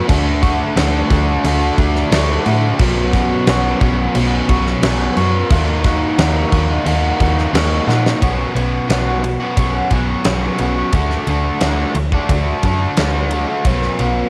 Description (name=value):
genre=rock, shoegaze and dream pop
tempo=88 BPM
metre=4/4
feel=straight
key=unclear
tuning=A4 = 440 Hz
part: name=crunchy overdriven guitar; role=riff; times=0.0-14.3 s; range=B2 to F#4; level=-20 LUFS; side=equal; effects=subtle chorus
part: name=slap-like FM bass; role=bass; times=0.1-14.2 s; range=B1 to A#2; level=-21 LUFS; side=equal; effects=none
part: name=huge arena drum kit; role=drums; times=0.1-14.1 s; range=crash cymbal, kick drum, ride cymbal, snare drum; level=-21 LUFS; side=equal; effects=cassette tape
room=studio ambience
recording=home recording on cassette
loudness=-16 LUFS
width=mono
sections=0.0-8.2 A section; 8.2-14.3 B section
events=drum fill 7.9-8.2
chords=0.1 D; 2.8 Bsus2; 5.5 D#m; 8.2 Bsus2; 10.9 D; 13.7 Bsus2